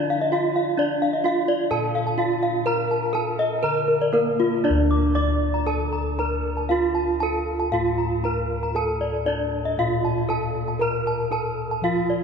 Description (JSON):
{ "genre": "Balinese gamelan", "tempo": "117-131 BPM", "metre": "4/4", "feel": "straight", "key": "D pelog", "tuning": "A4 = 440 Hz", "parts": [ { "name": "gamelan-type bronze metallophone", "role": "melody", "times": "0.0-12.2 s", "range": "Bb3 to D5", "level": "-25 LUFS", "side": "right 3 dB", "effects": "none" }, { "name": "gamelan-type bossed gongs", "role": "bass", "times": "0.0-12.2 s", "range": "D2 to Bb4", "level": "-26 LUFS", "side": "left 1 dB", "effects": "none" }, { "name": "gamelan-type bronze metallophone", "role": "arpeggios", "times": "0.1-12.2 s", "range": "F4 to D6", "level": "-25 LUFS", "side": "left 2 dB", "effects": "none" } ], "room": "wet cathedral reverb, RT60 4.7 s", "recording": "recorded in a church or concert hall", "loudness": "-20 LUFS", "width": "side -6 dB against mid", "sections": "0.0-4.7 A section; 4.7-12.2 B section", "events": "none", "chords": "none", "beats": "0.32 | 0.78 1.24 1.71 2.18 | 2.66 3.15 3.64 4.14 | 4.65 5.17 5.68 6.19 | 6.71 7.22 7.73 8.24 | 8.76 9.27 9.78 10.30 | 10.81 11.32 11.83" }